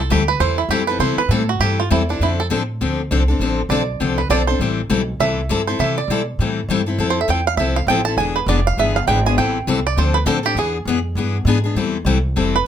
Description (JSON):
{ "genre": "acoustic string swing (jazz manouche)", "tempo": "201 BPM", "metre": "4/4", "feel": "swing 60% on 8ths", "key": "A minor", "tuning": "A4 = 441 Hz", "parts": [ { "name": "bluegrass banjo", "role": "second line", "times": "0.0-12.7 s", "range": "D4 to A5", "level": "-20 LUFS", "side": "right 6 dB", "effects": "none" }, { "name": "upright bass", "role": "bass", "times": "0.0-12.7 s", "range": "E1 to C3", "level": "-20 LUFS", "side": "equal", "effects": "none" }, { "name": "picked steel-string acoustic guitar", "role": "accompaniment", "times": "0.1-12.6 s", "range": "D3 to A4", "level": "-20 LUFS", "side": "left 5 dB", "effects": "none" } ], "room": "light reverb", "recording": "close, detailed microphones", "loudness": "-16 LUFS", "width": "side -9 dB against mid", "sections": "0.0-11.8 A section", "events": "five-string banjo solo 0.0-12.7", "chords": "0.0 Am7; 2.2 Dm7; 4.6 Am7; 7.0 Fmaj7; 8.2 E7#9; 9.4 Am7; 10.0 Dm7; 10.6 E7#9; 11.8 Am7" }